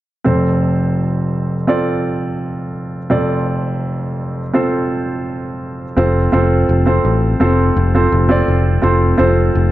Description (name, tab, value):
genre	pop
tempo	84 BPM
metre	4/4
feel	straight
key	F major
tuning	A4 = 440 Hz
part	warm grand piano	accompaniment	0.2-9.7 s	F1 to D5	-15 LUFS	right 1 dB	none
part	glass harmonica	sustained chords	6.0-9.7 s	A3 to C5	-25 LUFS	left 3 dB	none
part	picked electric bass	bass	6.0-9.7 s	F1 to A1	-14 LUFS	left 1 dB	none
room	light reverb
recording	dark, warm production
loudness	-13 LUFS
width	side -15 dB against mid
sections	0.3-6.0 A section; 6.0-9.7 B section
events	none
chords	0.3 F